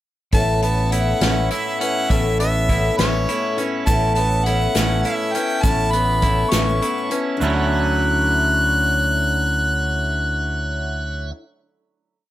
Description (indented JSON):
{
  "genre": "folk rock and heartland rock",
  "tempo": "68 BPM (dotted quarters)",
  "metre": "6/8",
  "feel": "straight",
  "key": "D major",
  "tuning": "A4 = 440 Hz",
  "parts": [
    { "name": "clear harmonica", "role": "melody", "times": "0.3-11.3 s", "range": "C#5 to F#6", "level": "-22 LUFS", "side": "equal", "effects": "none" },
    { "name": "picked twelve-string acoustic guitar", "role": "accompaniment", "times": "0.3-11.4 s", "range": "A2 to F#4", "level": "-25 LUFS", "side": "left 5 dB", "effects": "none" },
    { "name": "tonewheel organ", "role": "sustained chords", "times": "0.3-11.3 s", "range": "A4 to B5", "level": "-33 LUFS", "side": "right 2 dB", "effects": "overdrive, lush chorus" },
    { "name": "twangy electric guitar", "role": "riff", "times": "0.3-11.4 s", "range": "A2 to E4", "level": "-26 LUFS", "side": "right 5 dB", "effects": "spring reverb" },
    { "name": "fingered electric bass", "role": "bass", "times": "0.3-11.3 s", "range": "A1 to D2", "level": "-22 LUFS", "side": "equal", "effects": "none" },
    { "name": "unplugged drum kit", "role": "drums", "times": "0.3-7.2 s", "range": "hi-hat, kick drum, snare drum", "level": "-22 LUFS", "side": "equal", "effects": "none" },
    { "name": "egg shaker", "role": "percussion", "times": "3.9-7.7 s", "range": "none", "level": "-36 LUFS", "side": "right 7 dB", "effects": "none" }
  ],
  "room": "light reverb",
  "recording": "none",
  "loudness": "-17 LUFS",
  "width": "side -14 dB against mid",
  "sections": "0.3-7.4 pre-chorus; 7.4-11.0 final chord",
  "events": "none",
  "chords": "0.3 Aadd9; 7.4 Dmaj9"
}